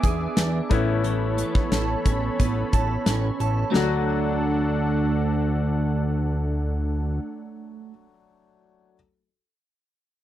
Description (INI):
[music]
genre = 1980s-style pop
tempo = 89 BPM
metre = 4/4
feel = straight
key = D major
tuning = A4 = 440 Hz
[part]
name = clear concert grand piano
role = accompaniment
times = 0.0-9.0 s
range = F#3 to D5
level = -30 LUFS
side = left 7 dB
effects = none
[part]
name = warm analog pad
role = sustained chords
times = 0.0-7.2 s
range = D4 to D6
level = -29 LUFS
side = left 2 dB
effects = chorus
[part]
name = clean electric guitar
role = riff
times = 0.0-8.0 s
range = E3 to A4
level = -29 LUFS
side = right 9 dB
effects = ensemble chorus, slapback echo
[part]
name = fat analog bass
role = bass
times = 0.0-7.2 s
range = A1 to E2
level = -25 LUFS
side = equal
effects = none
[part]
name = gated 80s drum kit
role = drums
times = 0.0-3.9 s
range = hi-hat, kick drum, snare drum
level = -23 LUFS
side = equal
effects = none
[sound]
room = little or no reverb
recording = none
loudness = -21 LUFS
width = side -12 dB against mid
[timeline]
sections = 0.0-3.7 A section; 3.7-6.4 B section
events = none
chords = 0.0 E7; 0.7 Aadd9; 3.7 D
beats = 0.37 | 1.05 1.72 2.40 3.07 | 3.74 4.42 5.09 5.76